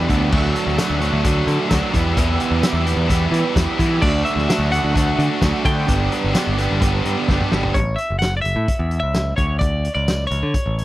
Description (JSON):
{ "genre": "indie rock", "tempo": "129 BPM", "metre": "4/4", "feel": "straight", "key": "D major", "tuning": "A4 = 440 Hz", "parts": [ { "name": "twelve-string electric guitar", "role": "melody", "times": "0.0-0.1, 4.0-10.8 s", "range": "C#5 to G5", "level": "-24 LUFS", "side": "equal", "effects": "none" }, { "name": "fuzz guitar", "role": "riff", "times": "0.0-7.7 s", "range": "E3 to G4", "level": "-22 LUFS", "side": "right 5 dB", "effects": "distortion, analog chorus" }, { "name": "scooped high-gain guitar", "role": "riff", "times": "0.0-7.7 s", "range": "G2 to E4", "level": "-25 LUFS", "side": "left 7 dB", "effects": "distortion" }, { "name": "modern bright picked electric bass", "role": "bass", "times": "0.0-10.8 s", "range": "F#1 to E3", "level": "-20 LUFS", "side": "equal", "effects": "none" }, { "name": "loose indie drum kit", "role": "drums", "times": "0.1-10.8 s", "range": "crash cymbal, hi-hat, kick drum, snare drum, tambourine, toms", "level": "-22 LUFS", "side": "equal", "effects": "none" } ], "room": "little or no reverb", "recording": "dry, close 1970s-style studio recording", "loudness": "-16 LUFS", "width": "side -15 dB against mid", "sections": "0.0-7.7 A section; 7.7-10.8 B section", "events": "drum fill 7.3-7.7", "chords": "0.3 D; 1.9 Em; 4.0 Dadd9; 5.9 G; 7.7 A; 9.4 D5", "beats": "| 0.32 0.78 1.24 1.71 | 2.17 2.63 3.10 3.56 | 4.02 4.49 4.95 5.42 | 5.88 6.35 6.81 7.28 | 7.75 8.21 8.68 9.15 | 9.62 10.08 10.55" }